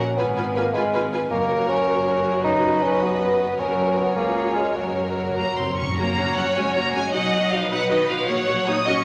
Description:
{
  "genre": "classical, dramatic, fast romantic movement for symphony orchestra",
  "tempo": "104 BPM (dotted quarters)",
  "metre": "6/8",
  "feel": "straight",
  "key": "F# major",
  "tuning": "A4 = 440 Hz",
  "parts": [
    { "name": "clear symphonic violin section", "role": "melody", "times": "0.0-9.0 s", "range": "C#5 to D#6", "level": "-30 LUFS", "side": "equal", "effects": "none" },
    { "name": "rich studio violin section", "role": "second line", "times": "0.0-8.9 s", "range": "G#4 to D#5", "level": "-28 LUFS", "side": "equal", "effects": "none" },
    { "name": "warm bassoon", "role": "accompaniment", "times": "0.0-5.8 s", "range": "F#3 to D#4", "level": "-25 LUFS", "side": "equal", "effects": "none" },
    { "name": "warm symphonic viola section", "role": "accompaniment", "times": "0.0-8.9 s", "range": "A#3 to F#4", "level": "-32 LUFS", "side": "equal", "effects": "none" },
    { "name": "clear symphonic cello section", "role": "bass", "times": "0.0-9.0 s", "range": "C#2 to D#4", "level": "-32 LUFS", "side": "equal", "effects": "none" },
    { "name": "rich studio double bass section", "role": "bass", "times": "0.0-8.9 s", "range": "F#1 to C#2", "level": "-37 LUFS", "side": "equal", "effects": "none" },
    { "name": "timpani", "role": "percussion", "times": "1.3-6.0 s", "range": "F#2", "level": "-36 LUFS", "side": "equal", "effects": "none" },
    { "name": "mellow French horn section", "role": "sustained chords", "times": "6.0-9.0 s", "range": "F#3 to F#4", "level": "-34 LUFS", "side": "equal", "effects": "none" }
  ],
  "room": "wet concert hall reverb, RT60 1.8 s",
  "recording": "none",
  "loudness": "-22 LUFS",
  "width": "mono",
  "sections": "0.0-6.0 A section; 6.0-9.0 A section",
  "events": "timpani fill 4.8-6.0",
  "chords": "0.2 Fdim/Ab; 1.3 F#; 2.4 B/F#; 3.6 F#; 4.2 C#; 4.8 F#; 7.1 B; 8.3 F#/A#",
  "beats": "| 0.18 0.75 | 1.32 1.88 | 2.45 3.01 | 3.59 4.17 | 4.77 5.37 | 5.98 6.56 | 7.14 7.71 | 8.29 8.86"
}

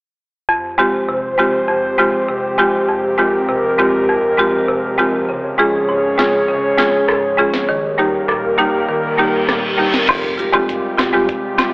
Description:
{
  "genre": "dancehall",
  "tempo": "100 BPM",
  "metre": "4/4",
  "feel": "straight",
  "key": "F minor",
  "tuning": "A4 = 440 Hz",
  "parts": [
    { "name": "buzzing marimba with medium mallets", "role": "accompaniment", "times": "0.5-11.7 s", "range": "F2 to Ab4", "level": "-16 LUFS", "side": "equal", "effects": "none" },
    { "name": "airy breathy pad", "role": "sustained chords", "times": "0.8-11.7 s", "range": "C3 to Db5", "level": "-18 LUFS", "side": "equal", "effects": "chorus, sidechain pumping" },
    { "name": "island pop drum kit", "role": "drums", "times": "6.2-11.7 s", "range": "crash cymbal, hi-hat, kick drum, rim click, snare drum", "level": "-20 LUFS", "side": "equal", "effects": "overdrive" },
    { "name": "reverse cymbal", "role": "sound effects", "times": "9.1-10.1 s", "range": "none", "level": "-22 LUFS", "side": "equal", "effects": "none" },
    { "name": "overdriven picked electric bass", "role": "bass", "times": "10.1-11.1 s", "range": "F1 to Ab1", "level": "-25 LUFS", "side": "equal", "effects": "none" },
    { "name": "woodblock and cabasa", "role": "percussion", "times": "10.1-11.7 s", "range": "none", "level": "-17 LUFS", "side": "equal", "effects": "none" }
  ],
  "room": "moderate lush hall reverb, RT60 1.9 s",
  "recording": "blown-out, overdriven recording, overdrive, telephone sound",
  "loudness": "-13 LUFS",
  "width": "side -32 dB against mid",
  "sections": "0.5-10.1 A section; 10.1-11.7 B section",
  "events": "reverse cymbal 9.1-10.1",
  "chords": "0.5 Fmadd9; 5.3 Db; 7.7 Eb; 10.1 Fmadd9",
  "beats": "| 0.49 1.09 1.69 2.29 | 2.89 3.49 4.09 4.69 | 5.29 5.89 6.49 7.09 | 7.69 8.29 8.89 9.49 | 10.09 10.69 11.29"
}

